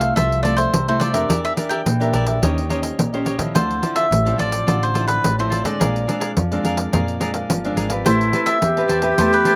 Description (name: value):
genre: samba and choro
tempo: 106 BPM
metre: 4/4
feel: straight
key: A minor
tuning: A4 = 441 Hz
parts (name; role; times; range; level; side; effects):
- cavaquinho; melody; 0.0-9.6 s; B4 to G5; -24 LUFS; equal; slapback echo
- cavaquinho; accompaniment; 0.0-9.6 s; D#4 to A5; -29 LUFS; equal; none
- nylon-string guitar; accompaniment; 0.0-9.6 s; A2 to B#4; -26 LUFS; equal; none
- upright bass; bass; 0.0-9.6 s; G1 to D#3; -26 LUFS; equal; none
- pandeiro; percussion; 0.0-9.6 s; none; -25 LUFS; equal; none
- bright wooden flute; second line; 8.1-9.6 s; E4 to G4; -21 LUFS; equal; none
room: little or no reverb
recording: recorded outdoors, with no room sound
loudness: -19 LUFS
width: mono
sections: 0.0-8.1 A section; 8.1-9.6 A section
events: none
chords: 0.0 Fmaj7; 1.3 Em7b5; 2.4 D#13; 3.5 Dm9; 5.8 Bb9; 8.1 Am9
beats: 0.17 0.73 | 1.30 1.86 2.42 2.99 | 3.55 4.11 4.68 5.24 | 5.80 6.37 6.93 7.49 | 8.06 8.62 9.18